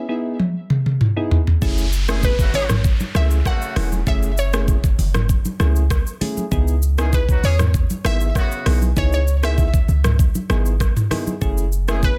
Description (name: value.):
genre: afrobeats.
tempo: 98 BPM.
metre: 4/4.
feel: straight.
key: unclear.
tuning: A4 = 440 Hz.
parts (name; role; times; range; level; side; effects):
glassy wavetable pluck; melody; 0.0-12.2 s; B4 to F#5; -29 LUFS; equal; chorus, tape echo.
soft electric-piano-like synth keys; accompaniment; 0.0-12.1 s; A3 to G#4; -29 LUFS; equal; chorus.
afro-pop drum kit; drums; 0.4-12.2 s; hi-hat, kick drum, rim click, shaker, toms; -22 LUFS; equal; soft clipping on snare.
clean 808-style bass; bass; 1.6-12.2 s; E1 to E2; -21 LUFS; equal; none.
congas; percussion; 1.6-11.6 s; none; -31 LUFS; equal; none.
downlifter; sound effects; 1.6-6.5 s; none; -35 LUFS; equal; none.
warm horn section; second line; 2.1-12.0 s; C#3 to G#4; -32 LUFS; equal; none.
room: little or no reverb.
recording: dense, heavily limited modern master.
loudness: -19 LUFS.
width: mono.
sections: 0.0-1.6 A section; 1.6-12.2 B section.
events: break 0.0-1.6; drum fill 0.4-1.6.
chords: 0.0 C#m7 (rootless); 1.6 F#m7; 6.5 C#m7; 11.4 F#m7.